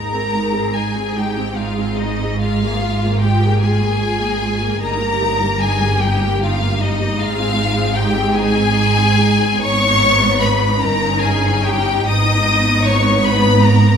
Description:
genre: classical, slow romantic movement for string orchestra.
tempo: 50 BPM (dotted quarters).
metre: 6/8.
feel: uneven beats, rubato.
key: Ab major, G# minor from 9.6 s.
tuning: A4 = 440 Hz.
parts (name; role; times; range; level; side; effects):
rich studio violin section; melody; 0.0-14.0 s; Eb5 to D#6; -19 LUFS; left 4 dB; none.
rich studio violin section; second line; 0.0-14.0 s; Eb4 to D#5; -22 LUFS; left 2 dB; none.
warm studio viola section; accompaniment; 0.0-14.0 s; G3 to Ab4; -22 LUFS; equal; none.
rich studio cello section; bass; 0.0-14.0 s; G2 to Ab2; -21 LUFS; right 3 dB; none.
warm studio double bass section; bass; 0.0-14.0 s; G1 to Ab1; -20 LUFS; right 1 dB; none.
room: wet recital hall reverb, RT60 1.6 s.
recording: recorded in a church or concert hall.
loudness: -14 LUFS.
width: side -7 dB against mid.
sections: 0.0-14.0 A section.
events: none.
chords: 0.0 Ab; 2.4 Bb5/Ab; 4.8 Eb/G; 7.2 Ab; 9.6 G#m; 10.8 D#7/G; 12.1 G#m.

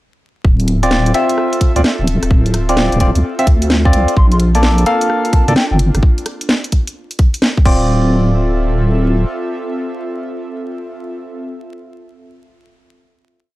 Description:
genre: UK garage, two-step garage.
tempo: 129 BPM.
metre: 4/4.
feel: swing 65% on 16ths.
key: D minor.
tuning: A4 = 441 Hz.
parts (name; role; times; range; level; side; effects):
airy breathy pad; sustained chords; 0.6-11.5 s; C4 to E5; -24 LUFS; equal; chorus, sidechain pumping.
deep soft wobble bass; bass; 0.4-9.2 s; D1 to Bb2; -14 LUFS; equal; chorus, sidechain pumping.
electronic kick drum; drums; 0.4-7.8 s; none; -11 LUFS; equal; small room ambience.
garage drum kit; drums; 0.6-7.8 s; crash cymbal, hi-hat, rim click, snare drum; -18 LUFS; equal; small room ambience.
percussive organ stab; stabs; 0.8-11.5 s; Bb3 to F5; -17 LUFS; equal; chorus, tape echo.
mellow hollow concert flute; melody; 4.2-5.8 s; G5 to C6; -24 LUFS; left 1 dB; tape echo.
room: digital ambience.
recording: dry, gritty hardware recording, vinyl crackle.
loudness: -12 LUFS.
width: side -17 dB against mid.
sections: 0.4-7.9 groove; 7.9-11.6 final hit.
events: none.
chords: 0.4 Dm7; 4.2 Bbmaj7; 5.8 Gm7; 7.7 Dm7.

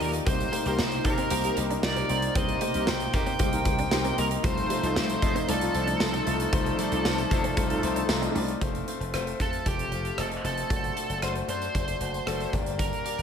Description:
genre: 1980s-style pop.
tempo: 115 BPM.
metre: 4/4.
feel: straight.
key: unclear.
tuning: A4 = 439 Hz.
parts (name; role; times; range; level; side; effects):
high-gain lead guitar; melody; 0.0-13.2 s; G4 to G5; -31 LUFS; right 2 dB; distortion, digital delay, slapback echo.
clear concert grand piano; accompaniment; 0.0-13.2 s; G2 to Eb5; -31 LUFS; left 6 dB; slapback echo.
brassy analog pad; sustained chords; 0.0-8.6 s; C3 to D5; -37 LUFS; right 1 dB; none.
direct-recorded clean electric guitar; riff; 0.0-8.5 s; F3 to D4; -38 LUFS; right 4 dB; none.
slap bass; bass; 0.0-13.2 s; F1 to C3; -32 LUFS; equal; none.
big rock drum kit; drums; 0.0-13.2 s; hi-hat, kick drum, rim click, snare drum, tambourine; -30 LUFS; right 1 dB; none.
analog synth brass; stabs; 0.7-8.4 s; Eb4 to Bb4; -36 LUFS; right 2 dB; none.
room: moderate lush hall reverb, RT60 2.4 s.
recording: big arena sound.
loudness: -24 LUFS.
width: side -7 dB against mid.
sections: 0.0-8.6 A section; 8.6-13.2 B section.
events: none.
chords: 0.3 Cm7; 4.4 F7/C; 8.6 F; 10.7 D7/F#; 12.5 Gm.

